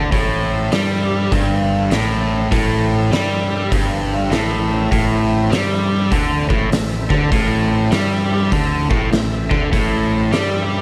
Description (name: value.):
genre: blues rock power trio and southern rock.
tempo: 100 BPM.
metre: 4/4.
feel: swing 64% on 8ths.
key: A minor.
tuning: A4 = 439 Hz.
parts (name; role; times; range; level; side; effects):
overdriven tonewheel organ; sustained chords; 0.0-10.8 s; C4 to F5; -33 LUFS; equal; chorus vibrato, slow rotary speaker.
crunchy overdriven guitar; riff; 0.0-10.8 s; G2 to G3; -20 LUFS; equal; none.
fuzz fingered electric bass; bass; 0.0-10.8 s; G1 to G2; -24 LUFS; equal; overdrive.
oversized low-tuned drum kit; drums; 0.1-10.5 s; hi-hat, kick drum, snare drum; -23 LUFS; equal; none.
room: light reverb, small room ambience.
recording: none.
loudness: -17 LUFS.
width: mono.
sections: 0.0-10.8 A section.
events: none.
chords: 0.0 Am.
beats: | 0.12 0.72 1.32 1.92 | 2.52 3.12 3.72 4.32 | 4.92 5.52 6.12 6.73 | 7.33 7.93 8.53 9.13 | 9.73 10.33.